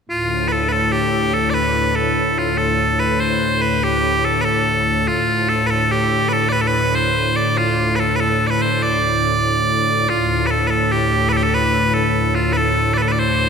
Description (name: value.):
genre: medieval dance.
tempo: 96 BPM (dotted quarters).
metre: 6/8.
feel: straight.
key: D dorian.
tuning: A4 = 440 Hz.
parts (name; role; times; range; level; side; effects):
loud bright bagpipes; melody; 0.1-13.5 s; F4 to D5; -17 LUFS; equal; none.
pipe organ, strings celeste; drone; 0.1-13.5 s; D2 to A2; -19 LUFS; equal; none.
room: wet church reverb, RT60 2.5 s.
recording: none.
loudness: -15 LUFS.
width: side -6 dB against mid.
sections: 0.1-10.1 A section; 10.1-13.5 A section.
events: none.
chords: none.